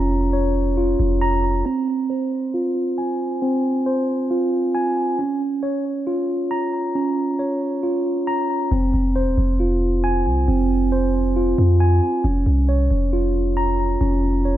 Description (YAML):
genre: hip hop, trap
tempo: 136 BPM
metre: 4/4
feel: half-time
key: F minor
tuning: A4 = 441 Hz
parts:
  - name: mellow tine electric piano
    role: arpeggios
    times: 0.0-14.6 s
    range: C4 to Bb5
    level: -20 LUFS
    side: right 1 dB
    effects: wide subtle chorus, low-pass filter, ping-pong delay
  - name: long sustained 808-style bass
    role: bass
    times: 0.0-1.6, 8.7-14.6 s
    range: E1 to F2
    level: -19 LUFS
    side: equal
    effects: none
room: light reverb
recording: dark, warm production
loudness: -18 LUFS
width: side -12 dB against mid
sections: 0.0-1.7 A section; 1.7-8.7 B section; 8.7-14.6 C section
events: filter sweep on tine electric piano 1.7-8.7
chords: 0.0 Bbm/F; 1.7 Fm; 5.2 Bbm; 8.7 Fm; 12.2 Bbm/F